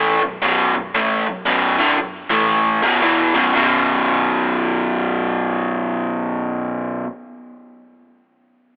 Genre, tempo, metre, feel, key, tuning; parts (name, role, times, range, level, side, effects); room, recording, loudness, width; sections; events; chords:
rock; 115 BPM; 4/4; swing 62% on 8ths; A4 = 440 Hz
overdriven electric guitar; riff; 0.0-7.1 s; B1 to A3; -18 LUFS; equal
moderate plate reverb, RT60 3.5 s; telephone sound; -18 LUFS; mono
0.0-3.6 A section; 3.6-7.7 B section
0.0 Bm; 2.2 A5; 2.8 B5